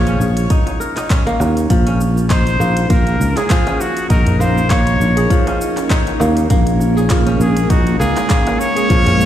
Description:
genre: organic downtempo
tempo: 100 BPM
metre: 4/4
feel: swing 55% on 16ths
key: Bb minor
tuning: A4 = 440 Hz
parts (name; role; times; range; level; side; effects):
- trumpet with straight mute; melody; 0.0-9.3 s; Gb4 to Db5; -21 LUFS; left 1 dB; ping-pong delay
- kora; arpeggios; 0.0-9.3 s; F3 to Bb4; -20 LUFS; right 1 dB; low-pass filter, digital delay
- sustaining fretless electric bass; bass; 0.0-9.3 s; Bb1 to Eb2; -16 LUFS; equal; none
- organic electronic drum kit; drums; 0.1-9.3 s; cabasa, handclaps, hi-hat; -27 LUFS; equal; overdrive
- electronic kick drum; drums; 0.5-9.0 s; none; -16 LUFS; equal; overdrive
- darbuka; percussion; 0.7-9.3 s; none; -24 LUFS; right 1 dB; none
- granular cloud pad; sustained chords; 3.2-9.3 s; Ab3 to F5; -22 LUFS; right 1 dB; built-in reverb, sidechain pumping
room: light reverb, small room reverb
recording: played on a big sound system in a bare room, stone room reverb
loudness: -12 LUFS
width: side -11 dB against mid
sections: 0.0-9.3 A section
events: none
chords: 0.0 Bbm7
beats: 0.50 1.10 | 1.70 2.30 2.90 3.50 | 4.10 4.70 5.30 5.90 | 6.50 7.10 7.70 8.30 | 8.90

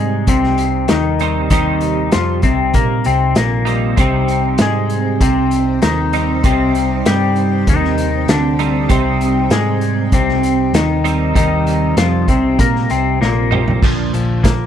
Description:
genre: indie rock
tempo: 98 BPM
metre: 4/4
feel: straight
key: C minor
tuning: A4 = 440 Hz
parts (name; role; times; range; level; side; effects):
- twangy electric guitar; riff; 0.0-14.7 s; Bb2 to Bb4; -17 LUFS; left 6 dB; wide subtle chorus
- twelve-string electric guitar; riff; 0.0-14.7 s; Bb2 to Eb4; -20 LUFS; right 14 dB; ensemble chorus
- hollow-body short-scale picked electric bass; bass; 0.0-14.7 s; Bb1 to Bb2; -19 LUFS; equal; none
- vintage drum kit; drums; 0.3-14.6 s; crash cymbal, hi-hat, kick drum, snare drum, toms; -17 LUFS; equal; none
- string machine, violas; sustained chords; 4.0-13.8 s; C4 to G5; -25 LUFS; right 2 dB; ensemble chorus
room: little or no reverb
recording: none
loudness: -13 LUFS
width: side -9 dB against mid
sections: 0.0-13.8 A section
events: drum fill 13.2-13.8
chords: 0.0 Cm; 13.8 Bb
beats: 0.28 0.90 | 1.52 2.13 2.75 3.36 | 3.98 4.59 5.21 5.83 | 6.44 7.05 7.67 8.29 | 8.90 9.52 10.13 10.74 | 11.36 11.97 12.59 13.21 | 13.82 14.44

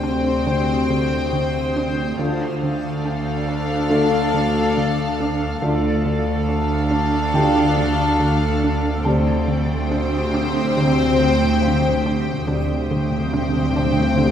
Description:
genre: cinematic, suspense film score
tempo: 70 BPM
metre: 4/4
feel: straight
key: D phrygian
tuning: A4 = 443 Hz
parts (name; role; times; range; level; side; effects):
- warm symphonic violin section; melody; 0.0-14.3 s; F5 to G5; -28 LUFS; left 4 dB; none
- warm symphonic violin section; second line; 0.0-14.3 s; A4 to C5; -26 LUFS; left 3 dB; none
- warm studio viola section; accompaniment; 0.0-14.3 s; C4 to D4; -27 LUFS; equal; none
- backwards swelling texture; sustained chords; 0.0-14.3 s; G4 to Eb6; -31 LUFS; equal; built-in reverb
- bright trombone section; sustained chords; 0.0-14.3 s; C3 to A3; -28 LUFS; equal; none
- dark French horn section; sustained chords; 0.0-14.3 s; C4 to G4; -28 LUFS; left 2 dB; none
- plucky analog bass; riff; 0.0-14.3 s; D3 to D4; -26 LUFS; equal; none
- rich symphonic double bass section; bass; 0.0-14.3 s; D2; -25 LUFS; right 2 dB; none
- warm symphonic cello section; bass; 0.0-14.3 s; D2; -26 LUFS; right 1 dB; none
- analog drone; drone; 0.0-14.3 s; D2; -29 LUFS; equal; none
- felt-muted upright piano; texture; 0.0-14.3 s; G4 to A5; -32 LUFS; equal; none
- timpani; percussion; 9.0-14.3 s; D3; -26 LUFS; left 1 dB; none
- swell; sound effects; 13.4-14.3 s; none; -27 LUFS; left 4 dB; none
room: wet scoring stage reverb, RT60 1.5 s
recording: heard from further back in the room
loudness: -17 LUFS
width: side -9 dB against mid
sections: 0.0-14.3 A section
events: timpani fill 9.0-14.3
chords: 0.0 Cm/D; 2.2 Dm; 9.0 Cm/D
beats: 0.48 1.33 | 2.19 3.05 3.90 4.76 | 5.62 6.48 7.33 8.19 | 9.05 9.90 10.76 11.62 | 12.48 13.33 14.19

